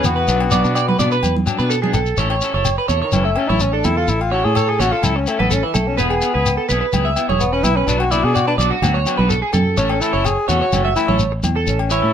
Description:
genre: highlife guitar band.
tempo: 126 BPM.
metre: 4/4.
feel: straight.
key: A major.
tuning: A4 = 439 Hz.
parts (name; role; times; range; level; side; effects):
mellow tenor saxophone; melody; 0.0-12.1 s; D#3 to A4; -20 LUFS; left 4 dB; none.
growling trumpet; second line; 0.0-1.0 s; F#4; -28 LUFS; left 3 dB; none.
electric guitar at the edge of break-up; accompaniment; 0.0-12.1 s; E3 to A4; -25 LUFS; left 5 dB; vibrato effect.
electric guitar at the edge of break-up; arpeggios; 0.0-12.1 s; E4 to E5; -20 LUFS; right 5 dB; wide subtle chorus, slapback echo.
fingered electric bass; bass; 0.0-12.1 s; E1 to B2; -20 LUFS; equal; none.
agogo bells; percussion; 0.0-11.9 s; none; -29 LUFS; left 11 dB; none.
shekere; percussion; 0.0-12.0 s; none; -22 LUFS; left 4 dB; none.
congas; percussion; 0.1-11.6 s; none; -23 LUFS; right 3 dB; none.
room: light reverb.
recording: none.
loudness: -15 LUFS.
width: side -8 dB against mid.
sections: 0.0-2.2 A section; 2.2-12.1 B section.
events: tenor saxophone solo 2.2-12.1.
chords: 0.3 Bm; 2.2 A; 6.0 E; 7.9 Bm; 9.8 A.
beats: | 0.28 0.76 1.23 1.71 | 2.18 2.66 3.13 3.61 | 4.08 4.56 5.03 5.51 | 5.98 6.46 6.93 7.41 | 7.88 8.35 8.83 9.30 | 9.78 10.25 10.73 11.20 | 11.68.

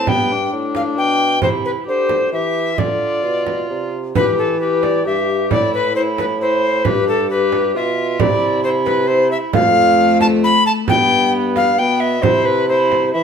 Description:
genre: classical, renaissance-style consort dance.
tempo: 133 BPM.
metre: 3/4.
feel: straight.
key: unclear.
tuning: A4 = 438 Hz.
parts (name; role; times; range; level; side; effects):
bright alto recorder; melody; 0.0-13.2 s; A4 to B5; -17 LUFS; left 1 dB; none.
warm viola; accompaniment; 0.0-13.2 s; A3 to G4; -20 LUFS; left 2 dB; none.
mellow bassoon; bass; 0.0-13.2 s; F2 to E3; -21 LUFS; right 1 dB; none.
frame drum; percussion; 0.1-13.1 s; none; -21 LUFS; right 5 dB; none.
room: wet stone room reverb, RT60 1.0 s.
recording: heard from further back in the room.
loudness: -14 LUFS.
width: side -7 dB against mid.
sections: 0.0-4.1 A section; 4.1-13.2 A section.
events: none.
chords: 0.1 G; 1.4 C; 2.8 Dm; 4.1 Em; 5.5 Am; 6.8 G; 8.2 C; 9.5 F; 10.9 G; 12.2 C.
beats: | 0.07 0.52 0.97 | 1.42 1.87 2.33 | 2.78 3.24 3.69 | 4.15 4.60 5.05 | 5.50 5.95 6.40 | 6.85 7.30 7.75 | 8.20 8.64 9.09 | 9.54 9.98 10.43 | 10.88 11.33 11.78 | 12.23 12.69 13.14.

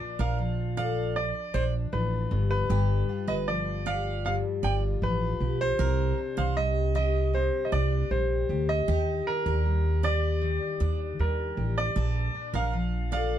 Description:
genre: pop.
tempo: 78 BPM.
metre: 4/4.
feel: straight.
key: Bb major.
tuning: A4 = 444 Hz.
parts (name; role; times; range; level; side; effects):
bright upright piano; melody; 0.0-13.4 s; Bb4 to G5; -31 LUFS; right 2 dB; none.
fingerpicked twelve-string acoustic guitar; accompaniment; 0.0-13.4 s; G2 to A4; -32 LUFS; left 6 dB; none.
picked steel-string acoustic guitar; arpeggios; 0.2-13.4 s; G4 to Eb5; -37 LUFS; right 5 dB; none.
upright bass; bass; 0.2-13.4 s; G1 to Eb2; -27 LUFS; right 1 dB; none.
room: little or no reverb.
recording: dark, warm production.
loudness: -25 LUFS.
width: side -10 dB against mid.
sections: 0.0-13.4 A section.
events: none.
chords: 0.0 Bbmaj7; 2.3 G7; 5.8 Cmadd9; 8.9 Ebmaj7; 12.0 Bbmaj7.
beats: 0.39 1.16 1.93 | 2.70 3.47 4.25 5.02 | 5.79 6.56 7.33 8.11 | 8.88 9.65 10.42 11.19 | 11.96 12.73.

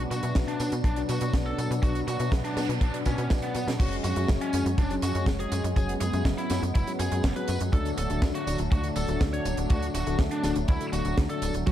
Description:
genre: italo disco.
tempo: 122 BPM.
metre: 4/4.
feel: straight.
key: F# minor.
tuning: A4 = 440 Hz.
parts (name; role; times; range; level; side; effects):
lush unison pad; sustained chords; 0.0-11.7 s; F#3 to D4; -33 LUFS; equal; chorus.
mellow tine electric piano; stabs; 0.0-11.7 s; B2 to F#5; -34 LUFS; left 4 dB; slow stereo tremolo.
tight sequencer bass; bass; 0.0-11.7 s; D1 to B2; -30 LUFS; equal; none.
biting lead guitar; melody; 0.1-11.7 s; B3 to C#5; -34 LUFS; equal; overdrive, digital delay.
tight funk drum kit; drums; 0.1-11.7 s; crash cymbal, hi-hat, snare drum, tambourine; -35 LUFS; right 2 dB; small room reverb.
kick drum; drums; 0.4-11.7 s; none; -25 LUFS; equal; small room reverb.
noise sweep; sound effects; 2.2-3.8 s; none; -42 LUFS; right 3 dB; none.
soft round pluck; arpeggios; 11.7 s; F#3; -26 LUFS; right 11 dB; chorus.
room: little or no reverb.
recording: dark, warm production.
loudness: -24 LUFS.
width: side -11 dB against mid.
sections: 0.0-3.8 A section; 3.8-11.7 B section.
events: filter sweep on tine electric piano 0.0-3.8; noise sweep 2.2-3.8; drum fill 3.3-3.8.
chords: 0.0 Bm; 3.8 F#sus2; 7.7 D.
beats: 0.36 0.85 1.34 | 1.83 2.32 2.81 3.31 | 3.80 4.29 4.78 5.27 | 5.77 6.26 6.75 7.24 | 7.73 8.22 8.72 9.21 | 9.70 10.19 10.68 11.18 | 11.67.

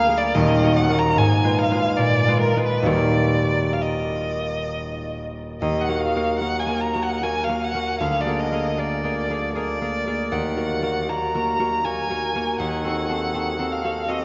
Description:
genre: classical, romantic duo for violin and harp.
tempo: 63-81 BPM.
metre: 3/4.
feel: rubato.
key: Eb minor.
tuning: A4 = 439 Hz.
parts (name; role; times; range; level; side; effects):
rich violin; melody; 0.0-14.2 s; Bb4 to Bb5; -26 LUFS; equal; none.
concert harp; accompaniment; 0.0-14.2 s; Eb1 to Cb5; -24 LUFS; equal; none.
room: wet cathedral reverb, RT60 6.0 s.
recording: in a vast, echoing space, nothing above 7.5 kHz.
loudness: -22 LUFS.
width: mono.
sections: 0.0-5.6 A section; 5.6-14.2 B section.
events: none.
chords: 0.4 Ebm; 1.2 Fdim/Ab; 2.0 Bb7b9; 2.9 Ebm; 8.0 Bb7/D; 10.3 Ebm; 12.6 Ebdim7.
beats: | 0.36 1.17 2.00 | 2.88 3.81 4.74 | 5.61 6.41 7.22 | 8.01 8.78 9.56 | 10.32 11.09 11.85 | 12.59 13.34 14.10.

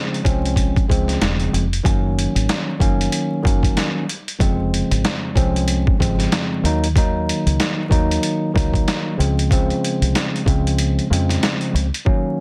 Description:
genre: hip hop, boom-bap hip-hop.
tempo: 94 BPM.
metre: 4/4.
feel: swing 58% on 16ths.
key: Db major.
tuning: A4 = 440 Hz.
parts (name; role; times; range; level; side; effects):
bright tine electric piano; accompaniment; 0.0-12.4 s; F2 to Eb4; -24 LUFS; equal; cassette tape, high-pass filter, low-pass filter.
boom bap sampler-style drum kit; drums; 0.1-12.2 s; hi-hat, kick drum, snare drum; -22 LUFS; equal; none.
deep dub fingered electric bass; bass; 0.2-11.9 s; Fb1 to F2; -23 LUFS; equal; none.
room: little or no reverb.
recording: dense, heavily limited modern master, vinyl crackle.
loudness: -19 LUFS.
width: mono.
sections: 0.0-12.4 A section.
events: kick muted 10.8-12.1; hi-hats muted 12.1-12.4.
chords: 0.0 Dbmaj7; 1.9 Gb6; 4.4 Dbmaj7/F; 6.6 Ebm; 9.2 Dbmaj7.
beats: 0.57 1.21 | 1.85 2.49 3.13 3.77 | 4.40 5.04 5.68 6.32 | 6.96 7.59 8.23 8.87 | 9.51 10.15 10.79 11.42 | 12.06.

